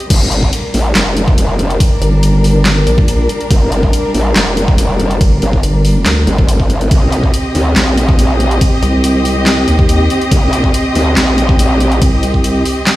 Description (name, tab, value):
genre	heavy wobble dubstep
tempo	141 BPM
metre	4/4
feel	half-time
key	G minor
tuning	A4 = 443 Hz
part	dark studio string section	sustained chords	0.0-13.0 s	G3 to Eb5	-16 LUFS	equal	sidechain pumping
part	dubstep drum kit	drums	0.0-13.0 s	crash cymbal, handclaps, hi-hat, ride cymbal, snare drum	-18 LUFS	equal	overdrive
part	growl bass	bass	0.1-12.0 s	F1 to D2	-13 LUFS	equal	chorus, overdrive
part	electronic kick drum	drums	0.1-12.4 s	none	-11 LUFS	equal	overdrive
part	vowel-sweep wobble bass	bass	2.0-6.3, 8.8-12.6 s	G1 to Eb2	-12 LUFS	equal	chorus, overdrive
room	little or no reverb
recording	played on a big sound system in a bare room, stone room reverb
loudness	-9 LUFS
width	side -16 dB against mid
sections	0.1-13.0 A section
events	drop 0.1-13.0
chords	0.1 Gm; 6.9 Cm